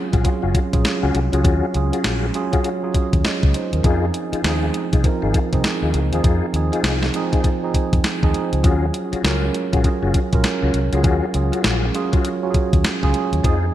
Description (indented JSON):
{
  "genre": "R&B, new jack swing",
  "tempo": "100 BPM",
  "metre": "4/4",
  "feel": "swing 62% on 16ths",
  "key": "Eb dorian",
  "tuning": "A4 = 439 Hz",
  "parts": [
    { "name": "mellow tine electric piano", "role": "accompaniment", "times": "0.0-13.7 s", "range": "F3 to Eb5", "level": "-23 LUFS", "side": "right 4 dB", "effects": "analog chorus" },
    { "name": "tonewheel organ", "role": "stabs", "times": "0.1-13.7 s", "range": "Db4 to Ab4", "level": "-26 LUFS", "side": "left 6 dB", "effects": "chorus vibrato, slow rotary speaker" },
    { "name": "vintage muted fingered electric bass", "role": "bass", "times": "0.1-13.7 s", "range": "Gb1 to F2", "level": "-21 LUFS", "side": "equal", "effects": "none" },
    { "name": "crisp 8-bit digital drum machine", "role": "drums", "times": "0.1-13.6 s", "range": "hi-hat, kick drum, snare drum", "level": "-20 LUFS", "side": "equal", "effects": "gated reverb" }
  ],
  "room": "light reverb, digital ambience",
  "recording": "bright 1980s-style digital production",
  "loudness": "-17 LUFS",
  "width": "side -12 dB against mid",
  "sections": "0.0-13.7 A section",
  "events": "none",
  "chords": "0.0 Ebm11; 3.8 Fm7; 8.6 Ebm11"
}